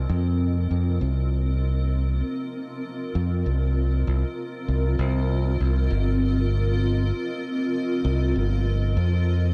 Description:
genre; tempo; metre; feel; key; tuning
ambient dub; 98 BPM; 4/4; swing 58% on 16ths; C minor; A4 = 440 Hz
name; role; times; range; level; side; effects
granular cloud pad; sustained chords; 0.0-9.5 s; C4 to Eb5; -30 LUFS; equal; built-in reverb
modern bright fingered electric bass; bass; 0.0-9.5 s; G1 to F2; -24 LUFS; equal; none
room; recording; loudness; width
light reverb; dark, warm production; -24 LUFS; mono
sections
0.0-5.0 A section; 5.0-9.5 B section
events
none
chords
0.1 F5; 5.0 Cm7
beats
| 0.09 0.71 1.32 1.93 | 2.54 3.15 3.77 4.38 | 4.99 5.60 6.22 6.83 | 7.44 8.05 8.66 9.28

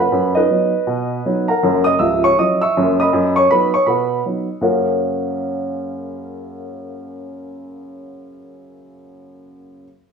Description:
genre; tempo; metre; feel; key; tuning
jazz, stride piano; 160 BPM; 4/4; swing 61% on 8ths; F# major; A4 = 438 Hz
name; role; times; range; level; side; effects
warm upright piano; solo; 0.0-9.9 s; C#1 to E6; -16 LUFS; right 1 dB; none
room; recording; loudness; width
wet studio reverb, RT60 0.9 s; band playing live in one room; -15 LUFS; side -6 dB against mid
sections
0.0-4.6 A section; 4.6-7.6 B section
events
none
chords
0.1 B/F#; 1.6 F#7; 3.1 B/F#; 4.6 F#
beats
| 0.12 0.50 0.87 1.25 | 1.62 2.00 2.37 2.75 | 3.12 3.50 3.87 4.25 | 4.62 5.00 5.37 5.75 | 6.12 6.50 6.87 7.25

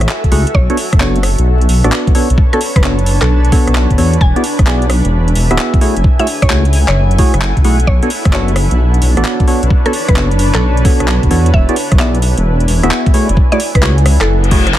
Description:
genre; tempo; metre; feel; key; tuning
UK garage, two-step garage; 131 BPM; 4/4; swing 67% on 16ths; B dorian; A4 = 436 Hz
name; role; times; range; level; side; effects
mallet-like synth pluck; melody; 0.0-14.7 s; A4 to G#5; -22 LUFS; equal; chorus, dub echo
dark detuned saw bass; bass; 0.0-14.7 s; D1 to E2; -12 LUFS; equal; sidechain pumping
garage drum kit; drums; 0.0-14.8 s; handclaps, hi-hat, rim click; -20 LUFS; equal; soft clipping on snare
granular cloud pad; texture; 0.0-14.7 s; D4 to A5; -21 LUFS; equal; built-in reverb, sidechain pumping
electronic kick drum; drums; 0.2-14.6 s; none; -11 LUFS; equal; none
percussive organ stab; stabs; 0.3-14.7 s; A3 to F#5; -18 LUFS; equal; chorus, tape echo
reverse cymbal; sound effects; 14.4-14.8 s; none; -18 LUFS; left 6 dB; none
room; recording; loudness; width
little or no reverb; dense, heavily limited modern master, vinyl crackle; -9 LUFS; side -13 dB against mid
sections
0.0-14.8 A section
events
reverse cymbal 14.4-14.8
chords
0.0 F#m9; 0.5 Bm9; 4.2 E7; 5.8 F#m9; 7.9 Bm9; 11.5 E7; 13.1 F#m9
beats
0.09 | 0.54 1.00 1.46 1.92 | 2.38 2.83 3.29 3.75 | 4.21 4.67 5.12 5.58 | 6.04 6.50 6.96 7.41 | 7.87 8.33 8.79 9.25 | 9.70 10.16 10.62 11.08 | 11.54 11.99 12.45 12.91 | 13.37 13.83 14.29 14.74

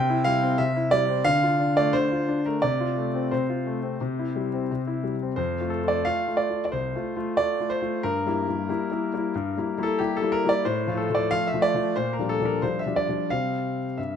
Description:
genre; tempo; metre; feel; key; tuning
classical-period piano sonatina; 90 BPM; 4/4; straight; F major; A4 = 437 Hz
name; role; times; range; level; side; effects
clear grand piano; solo; 0.0-14.2 s; C2 to G5; -23 LUFS; left 1 dB; none
room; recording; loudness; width
moderate recital hall reverb, RT60 1.3 s; close, detailed microphones; -23 LUFS; side -8 dB against mid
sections
0.0-5.4 A section; 5.4-14.2 B section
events
none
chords
0.0 C; 1.3 Dm; 2.6 F/C; 4.0 C; 5.4 F; 8.0 Edim/G; 10.7 F/A; 12.0 Gm7/Bb; 13.3 C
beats
0.59 1.26 1.94 | 2.62 3.32 4.01 4.70 | 5.38 6.05 6.71 7.37 | 8.03 8.69 9.35 10.00 | 10.65 11.31 11.97 12.63 | 13.30 13.98

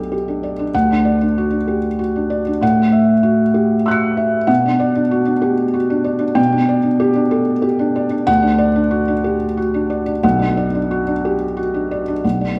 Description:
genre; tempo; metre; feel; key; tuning
neoclassical minimalist piano; 63 BPM (dotted quarters); 6/8; rubato; B minor; A4 = 442 Hz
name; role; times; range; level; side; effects
felt-muted upright piano; solo; 0.0-12.6 s; B1 to C#7; -17 LUFS; equal; none
room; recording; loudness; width
wet recital hall reverb, RT60 1.4 s; recorded in a church or concert hall; -17 LUFS; mono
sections
0.0-12.2 A section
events
none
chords
0.0 G/B; 0.7 D; 2.6 A6; 4.5 Bm; 6.4 G/B; 8.3 D; 10.2 Bm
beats
| 0.74 1.68 | 2.61 3.55 | 4.49 5.44 | 6.38 7.33 | 8.28 9.25 | 10.23 11.24 | 12.24

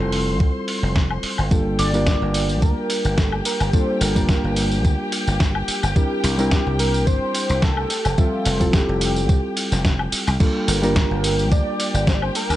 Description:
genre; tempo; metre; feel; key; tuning
nu-disco, nu disco; 108 BPM; 4/4; swing 54% on 16ths; G dorian; A4 = 444 Hz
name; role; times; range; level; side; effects
reed electric piano; accompaniment; 0.0-12.6 s; G3 to E5; -24 LUFS; equal; dub echo
dark studio violin section; sustained chords; 0.0-12.6 s; G4 to C6; -31 LUFS; left 2 dB; sidechain pumping
dry thumbed slap bass; bass; 0.0-12.6 s; F1 to D2; -23 LUFS; equal; sidechain pumping
dusty soul sampler-style drum kit; drums; 0.1-12.6 s; crash cymbal, hi-hat, snare drum, tambourine, woodblock; -25 LUFS; equal; none
electronic kick drum; drums; 0.4-12.2 s; none; -18 LUFS; equal; none
wide unison lead; melody; 1.8-12.6 s; F4 to D5; -26 LUFS; equal; cassette tape, dub echo
room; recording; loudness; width
little or no reverb; nothing above 10.6 kHz; -17 LUFS; side -14 dB against mid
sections
0.0-10.4 A section; 10.4-12.6 B section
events
drop 10.4-12.6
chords
0.0 Fmaj9; 1.5 Gm9; 6.0 C9; 7.9 Fmaj9; 10.4 Gm9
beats
0.40 0.96 | 1.51 2.07 2.62 3.18 | 3.74 4.29 4.85 5.40 | 5.96 6.51 7.07 7.62 | 8.18 8.74 9.29 9.85 | 10.40 10.96 11.51 12.07

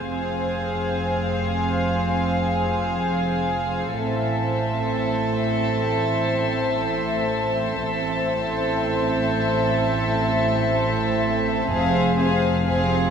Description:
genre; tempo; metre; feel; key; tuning
cinematic, suspense film score; 62 BPM; 4/4; straight; unclear; A4 = 442 Hz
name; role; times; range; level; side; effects
dark studio violin section; melody; 0.0-13.1 s; E5 to F5; -30 LUFS; left 4 dB; none
rich studio violin section; second line; 0.0-13.1 s; Ab4 to A4; -28 LUFS; left 1 dB; none
dark studio viola section; accompaniment; 0.0-13.1 s; C4; -27 LUFS; right 1 dB; none
drifting glass-harmonics texture; sustained chords; 0.0-13.1 s; C5 to A5; -27 LUFS; equal; chorus, built-in reverb
warm studio cello section; bass; 0.0-13.1 s; F2 to A2; -27 LUFS; right 2 dB; none
warm studio double bass section; bass; 0.0-13.1 s; F1 to A1; -28 LUFS; right 3 dB; none
warm studio violin section; texture; 4.0-13.1 s; A5 to Db7; -36 LUFS; left 4 dB; none
room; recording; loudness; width
moderate scoring stage reverb, RT60 2.0 s; minimal, uncompressed stereo recording; -20 LUFS; side -7 dB against mid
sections
0.0-13.1 A section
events
none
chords
0.0 Fm; 4.0 Am; 11.7 Fm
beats
| 0.10 1.07 2.03 3.00 | 3.97 4.94 5.91 6.87 | 7.84 8.81 9.78 10.74 | 11.71 12.68

